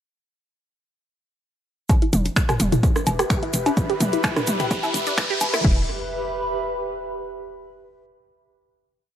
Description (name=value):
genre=minimal techno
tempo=128 BPM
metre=4/4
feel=swing 54% on 16ths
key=E minor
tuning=A4 = 440 Hz
part: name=electronic kick drum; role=drums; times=1.9-5.7 s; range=none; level=-20 LUFS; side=equal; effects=none
part: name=garage drum kit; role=drums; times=1.9-5.7 s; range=crash cymbal, finger snaps, hi-hat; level=-28 LUFS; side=equal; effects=none
part: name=organic electronic drum kit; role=percussion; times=1.9-5.6 s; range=cowbell, rim click, toms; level=-25 LUFS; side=right 1 dB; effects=overdrive, analog delay
part: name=tube shaker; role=percussion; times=1.9-5.6 s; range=none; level=-34 LUFS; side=right 3 dB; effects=none
part: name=riser and impact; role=sound effects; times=3.4-7.5 s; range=none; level=-31 LUFS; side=equal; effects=none
part: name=warbly tape-like pad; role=texture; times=3.0-7.5 s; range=G4 to B5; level=-28 LUFS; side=equal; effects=chorus, built-in reverb, sidechain pumping
part: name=resonant blip pluck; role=riff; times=2.0-5.9 s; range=D4 to G4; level=-27 LUFS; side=left 1 dB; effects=phaser, sidechain pumping, tape echo
part: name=hollow knocking FM bass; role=bass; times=2.1-5.9 s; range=E1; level=-24 LUFS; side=equal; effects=tube saturation, sidechain pumping
room=light reverb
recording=dry, gritty hardware recording, high-pass filter, lossy compression artefacts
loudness=-19 LUFS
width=side -10 dB against mid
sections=1.9-5.6 build; 5.6-7.5 final chord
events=build-up 1.9-5.6; filter sweep on synth arpeggio sound 1.9-5.6; filter sweep 1.9-5.6; riser 3.4-5.6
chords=1.9 Em